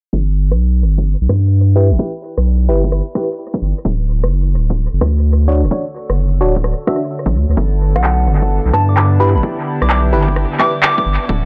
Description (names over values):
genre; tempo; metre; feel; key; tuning
UK garage, two-step garage; 129 BPM; 4/4; swing 66% on 16ths; unclear; A4 = 440 Hz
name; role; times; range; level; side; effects
saturated sub bass; bass; 0.1-11.5 s; D1 to G2; -15 LUFS; equal; none
electronic kick drum; drums; 0.1-11.4 s; none; -24 LUFS; equal; high-pass filter on kick
granular cloud pad; texture; 2.3-11.5 s; D3 to G5; -30 LUFS; equal; built-in reverb, sidechain pumping
electronic rim click and handclaps; drums; 0.5-10.9 s; none; -22 LUFS; equal; dub echo
FM electric piano; stabs; 1.8-10.7 s; D4 to E5; -22 LUFS; equal; chorus, phaser, cassette tape, low-pass filter, analog delay
dark symphonic violin section; sustained chords; 7.6-11.5 s; B3 to A4; -27 LUFS; equal; vintage 12-bit sampler grit, sidechain pumping
soft struck synth lead; melody; 8.0-11.4 s; F#5 to D6; -22 LUFS; equal; chorus, dub echo
room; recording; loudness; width
little or no reverb; echo-heavy mix, low-pass filter; -15 LUFS; mono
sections
0.1-11.5 A section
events
fade-in on ambient pad 0.1-11.5; filter sweep on sub bass 0.1-11.5; filter sweep on FM electric piano 0.1-11.5; filter sweep 0.1-11.5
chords
0.1 G6; 3.9 Dmaj7; 7.6 G6